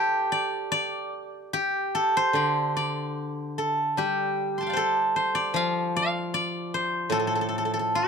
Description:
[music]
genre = chinese traditional, Chinese solo plucked strings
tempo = 75 BPM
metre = 2/4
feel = rubato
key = D yu mode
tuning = A4 = 440 Hz
[part]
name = steel-string zither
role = solo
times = 0.0-8.1 s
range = A2 to C6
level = -24 LUFS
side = equal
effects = none
[sound]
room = light reverb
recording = dark, warm production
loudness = -24 LUFS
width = side -6 dB against mid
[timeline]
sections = 0.0-2.4 A section; 2.4-8.1 B section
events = none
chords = none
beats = | 0.70 1.53 | 2.36 3.18 | 3.98 4.76 | 5.54 6.33 | 7.11 7.93

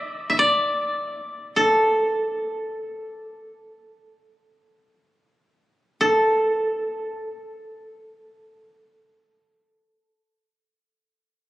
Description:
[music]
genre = japanese traditional, Japanese chamber music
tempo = free time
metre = none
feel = none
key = unclear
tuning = A4 = 440 Hz
[part]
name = koto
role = solo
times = 0.0-10.1 s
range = A4 to E5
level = -21 LUFS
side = equal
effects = none
[sound]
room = moderate church reverb, RT60 2.9 s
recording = recorded on a phone in the room, club reverb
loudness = -20 LUFS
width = side -15 dB against mid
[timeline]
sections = 0.0-6.0 A section; 6.0-9.6 B section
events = slowing down 0.0-6.0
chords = none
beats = free time

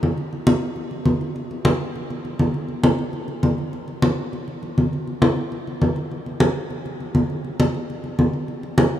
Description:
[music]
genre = latin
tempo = 202 BPM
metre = 4/4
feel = straight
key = none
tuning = none
[part]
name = congas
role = percussion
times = 0.0-8.9 s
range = none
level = -20 LUFS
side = equal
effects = none
[sound]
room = wet huge ambient reverb, RT60 7.9 s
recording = in a vast, echoing space, studio reverb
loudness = -20 LUFS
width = side -11 dB against mid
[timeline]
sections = 0.0-6.1 A section; 6.1-9.0 B section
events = none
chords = none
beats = | 0.17 0.47 0.77 1.06 | 1.36 1.66 1.96 2.25 | 2.55 2.85 3.14 3.44 | 3.74 4.03 4.33 4.63 | 4.92 5.22 5.52 5.81 | 6.11 6.41 6.70 7.00 | 7.30 7.59 7.89 8.19 | 8.48 8.78

